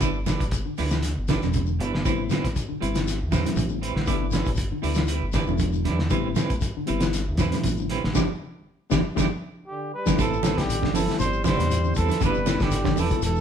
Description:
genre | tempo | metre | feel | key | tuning
afrobeat | 118 BPM | 4/4 | swing 54% on 16ths | A minor | A4 = 443 Hz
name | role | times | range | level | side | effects
mellow electric guitar | arpeggios | 0.0-13.3 s | B2 to G3 | -31 LUFS | left 4 dB | none
clean electric guitar | stabs | 0.0-13.1 s | G3 to B4 | -31 LUFS | right 7 dB | tremolo
fingered electric bass | bass | 0.0-13.4 s | E1 to E2 | -28 LUFS | equal | none
cloth-damped thuddy drum kit | drums | 0.0-13.4 s | hi-hat, kick drum, snare drum | -27 LUFS | equal | none
congas | percussion | 0.0-13.1 s | none | -30 LUFS | right 6 dB | none
shekere | percussion | 0.0-13.4 s | none | -34 LUFS | left 5 dB | none
reed electric piano | accompaniment | 2.0-13.4 s | G3 to F#4 | -32 LUFS | left 6 dB | none
breathy trumpet | melody | 9.7-13.4 s | G4 to C5 | -28 LUFS | right 1 dB | none
breathy trombone | second line | 9.7-13.4 s | D3 to G3 | -33 LUFS | right 3 dB | none
room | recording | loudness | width
moderate large studio reverb, RT60 1.0 s | band playing live in one room | -22 LUFS | side -8 dB against mid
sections
0.0-10.2 A section; 10.2-13.4 B section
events
band accent 8.2-10.2; drum fill 9.6-10.2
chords
0.0 G6; 2.0 Am9; 4.1 G6; 6.1 Am9; 8.2 G6; 10.2 Am9; 12.2 G6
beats
| 0.02 0.52 1.03 1.54 | 2.05 2.56 3.06 3.57 | 4.08 4.59 5.10 5.61 | 6.12 6.63 7.13 7.64 | 8.15 8.66 9.17 9.68 | 10.19 10.69 11.20 11.71 | 12.22 12.73 13.23

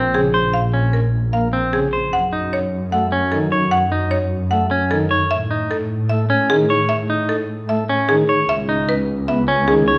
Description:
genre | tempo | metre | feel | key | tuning
classical, minimalist pattern music | 151 BPM | 4/4 | straight | F# dorian | A4 = 438 Hz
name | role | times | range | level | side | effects
clean electric guitar | arpeggios | 0.0-10.0 s | B#3 to C#5 | -22 LUFS | equal | none
rich studio double bass section | bass | 0.0-10.0 s | A#1 to A2 | -24 LUFS | equal | none
buzzing marimba with hard mallets | melody | 0.1-9.9 s | G#4 to F#5 | -23 LUFS | equal | none
pipe organ, sparkling flutes | accompaniment | 0.1-9.8 s | C#3 to B3 | -27 LUFS | equal | none
room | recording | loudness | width
wet recital hall reverb, RT60 1.4 s | none | -18 LUFS | mono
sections
0.0-10.0 A section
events
none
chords
0.0 A#m7; 2.1 F#m; 5.3 A; 8.5 C#m7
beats
0.14 | 0.54 0.94 1.33 1.73 | 2.13 2.52 2.92 3.32 | 3.72 4.11 4.51 4.91 | 5.31 5.70 6.10 6.50 | 6.89 7.29 7.69 8.09 | 8.48 8.88 9.28 9.68

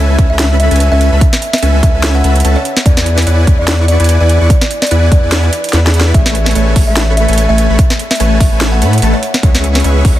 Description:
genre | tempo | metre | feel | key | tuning
future bass | 146 BPM | 4/4 | swing 56% on 16ths, half-time | A major | A4 = 440 Hz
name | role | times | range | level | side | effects
kalimba | melody | 0.0-10.2 s | G#4 to F#5 | -18 LUFS | equal | sidechain pumping, digital delay
dense compressed supersaw | riff | 0.0-10.2 s | A3 to C#6 | -16 LUFS | equal | cassette tape, sidechain pumping
saturated sub bass | bass | 0.0-10.2 s | A1 to A2 | -11 LUFS | equal | sidechain pumping
electronic kick drum | drums | 0.2-10.1 s | none | -10 LUFS | equal | none
trap drum kit | drums | 0.2-10.1 s | hi-hat, snare drum | -16 LUFS | equal | none
room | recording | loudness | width
digital ambience | dense, heavily limited modern master | -8 LUFS | side -14 dB against mid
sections
0.0-10.2 A section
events
drum fill 5.7-6.1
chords
0.0 Amaj7/C#; 2.9 E7; 6.1 Amaj7; 9.2 C#m7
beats
0.39 0.80 | 1.21 1.62 2.04 2.45 | 2.86 3.27 3.68 4.09 | 4.50 4.91 5.32 5.73 | 6.14 6.55 6.97 7.38 | 7.79 8.20 8.61 9.02 | 9.43 9.84

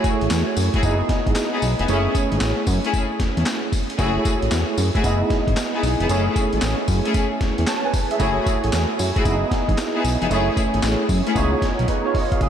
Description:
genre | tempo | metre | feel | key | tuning
R&B, new jack swing | 114 BPM | 4/4 | swing 66% on 16ths | F# dorian | A4 = 440 Hz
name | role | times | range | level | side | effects
barky tine electric piano | accompaniment | 0.0-12.5 s | F#3 to A5 | -23 LUFS | right 3 dB | ensemble chorus, shimmer reverb
clear studio string section | stabs | 0.0-11.4 s | A3 to G#4 | -25 LUFS | left 3 dB | tape echo, shimmer reverb
boom bap sampler-style drum kit | drums | 0.0-12.5 s | handclaps, hi-hat, kick drum, snare drum, tambourine | -24 LUFS | equal | none
fat analog bass | bass | 0.2-12.5 s | E#1 to F#2 | -22 LUFS | equal | none
room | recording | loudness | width
moderate huge ambient reverb, RT60 7.8 s | dreamy mix soaked in reverb | -18 LUFS | side -9 dB against mid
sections
0.0-12.4 A section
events
drum fill 11.9-12.4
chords
0.0 F#m9; 0.8 Emaj7/F#; 1.9 F#m9; 5.0 Emaj7/F#; 6.1 F#m9; 9.3 Emaj7/F#; 10.3 Amaj7/F#; 11.4 C#9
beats
0.30 0.83 1.36 | 1.88 2.41 2.94 3.46 | 3.99 4.51 5.04 5.57 | 6.09 6.62 7.15 7.67 | 8.20 8.73 9.25 9.78 | 10.30 10.83 11.36 11.88 | 12.41

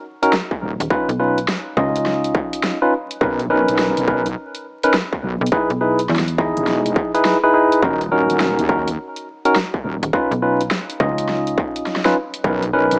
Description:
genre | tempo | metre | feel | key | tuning
glitch hop | 104 BPM | 4/4 | swing 64% on 16ths | unclear | A4 = 440 Hz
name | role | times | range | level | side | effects
tine electric piano | stabs | 0.2-13.0 s | Db4 to Eb5 | -20 LUFS | equal | sidechain pumping, digital delay
dubstep drum kit | drums | 0.2-13.0 s | hi-hat, snare drum | -26 LUFS | equal | none
electronic kick drum | drums | 0.5-12.6 s | none | -24 LUFS | equal | distortion
wobble bass | bass | 0.6-13.0 s | Eb1 to Eb2 | -26 LUFS | equal | chorus
slap-like FM bass | bass | 0.8-6.5, 10.0-11.6 s | Eb1 to E2 | -25 LUFS | equal | none
room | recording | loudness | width
light reverb, digital ambience | vinyl crackle, small speaker sound | -19 LUFS | mono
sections
0.0-13.0 A section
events
none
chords
0.0 Ebm7; 0.9 Db9; 3.2 Bmaj9; 5.5 Emaj7; 7.8 Ebm7; 10.1 Db9; 12.4 Bmaj9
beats
0.33 | 0.91 1.48 2.06 2.64 | 3.21 3.79 4.37 4.94 | 5.52 6.10 6.67 7.25 | 7.83 8.40 8.98 9.56 | 10.14 10.71 11.29 11.87 | 12.44

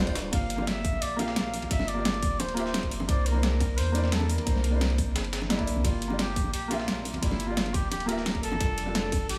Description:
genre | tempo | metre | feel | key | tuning
liquid drum and bass | 174 BPM | 4/4 | straight | G dorian | A4 = 440 Hz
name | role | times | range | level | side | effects
felt-muted upright piano | accompaniment | 0.0-9.4 s | G3 to F5 | -35 LUFS | equal | digital delay
saturated sub bass | bass | 0.0-9.4 s | D1 to E2 | -33 LUFS | equal | none
breakbeat sampler-style drum kit | drums | 0.1-9.4 s | hi-hat, ride cymbal, snare drum | -40 LUFS | equal | high-pass filter on cymbals, high-pass filter on snare, high-pass filter on hats
electronic kick drum | drums | 0.1-9.2 s | none | -31 LUFS | equal | none
pop drum kit | drums | 0.2-9.4 s | hi-hat, snare drum | -34 LUFS | equal | overdrive
breathy flugelhorn | melody | 0.3-9.4 s | E4 to F5 | -37 LUFS | equal | dub echo
bongos and congas | percussion | 0.3-9.2 s | none | -40 LUFS | equal | none
room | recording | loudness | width
light reverb | small room ambience | -28 LUFS | mono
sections
0.0-9.4 A section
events
none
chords
0.3 Gm7; 3.1 C9; 5.8 Gm7; 8.6 F69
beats
| 0.33 0.67 1.02 1.36 | 1.71 2.05 2.40 2.74 | 3.09 3.43 3.78 4.12 | 4.47 4.81 5.16 5.50 | 5.85 6.19 6.54 6.88 | 7.22 7.57 7.92 8.26 | 8.61 8.95 9.29

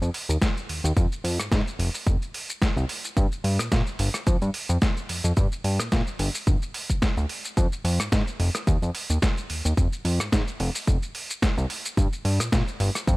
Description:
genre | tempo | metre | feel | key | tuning
nu-disco, nu disco | 109 BPM | 4/4 | swing 55% on 16ths | F dorian | A4 = 440 Hz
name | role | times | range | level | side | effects
fat analog bass | bass | 0.0-13.2 s | F1 to Bb2 | -24 LUFS | equal | none
dusty soul sampler-style drum kit | drums | 0.0-13.2 s | hi-hat, rim click, shaker, snare drum | -29 LUFS | equal | overdrive, small room reverb
electronic kick drum | drums | 0.4-13.2 s | none | -23 LUFS | equal | small room reverb
room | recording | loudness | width
little or no reverb | none | -22 LUFS | side -22 dB against mid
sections
0.0-13.2 A section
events
none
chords
none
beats
0.42 | 0.97 1.52 2.07 2.62 | 3.17 3.72 4.27 4.82 | 5.37 5.92 6.47 7.02 | 7.57 8.12 8.67 9.22 | 9.77 10.32 10.88 11.43 | 11.98 12.53 13.08

